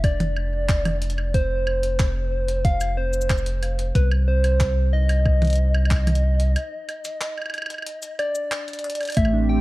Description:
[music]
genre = IDM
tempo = 92 BPM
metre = 4/4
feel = straight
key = unclear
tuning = A4 = 440 Hz
[part]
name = soft struck synth lead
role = melody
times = 0.0-9.6 s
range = B4 to G5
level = -27 LUFS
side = equal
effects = chorus, cassette tape, digital delay
[part]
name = warm sub bass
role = bass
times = 0.0-9.6 s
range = F1 to C2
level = -21 LUFS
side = equal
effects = none
[part]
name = electronic kick drum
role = drums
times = 0.0-9.3 s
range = none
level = -21 LUFS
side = equal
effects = none
[part]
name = jungle sampler-style drum kit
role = drums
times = 0.0-9.3 s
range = handclaps, hi-hat, shaker, toms, woodblock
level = -30 LUFS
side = right 1 dB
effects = none
[part]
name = phased analog pad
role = sustained chords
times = 9.3-9.6 s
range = A3 to G4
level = -24 LUFS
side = right 3 dB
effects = phaser, chorus
[part]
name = harp-like synth pluck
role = arpeggios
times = 9.2-9.4 s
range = A3 to D4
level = -22 LUFS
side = right 1 dB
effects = chorus
[sound]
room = digital ambience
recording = dark, warm production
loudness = -20 LUFS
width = side -18 dB against mid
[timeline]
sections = 0.0-9.6 A section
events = break 6.6-9.2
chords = 0.0 F5; 4.0 Cmadd9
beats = 0.04 0.69 | 1.34 2.00 2.65 3.30 | 3.95 4.60 5.26 5.91 | 6.56 7.21 7.86 8.52 | 9.17

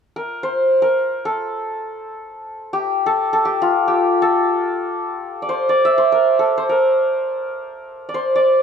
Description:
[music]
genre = indian classical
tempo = free time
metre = none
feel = none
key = unclear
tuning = A4 = 442 Hz
[part]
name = santur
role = solo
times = 0.2-8.6 s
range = F4 to E5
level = -16 LUFS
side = equal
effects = none
[sound]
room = light reverb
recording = close, detailed microphones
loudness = -16 LUFS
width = side -7 dB against mid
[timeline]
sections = 0.0-8.6 A section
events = none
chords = none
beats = free time

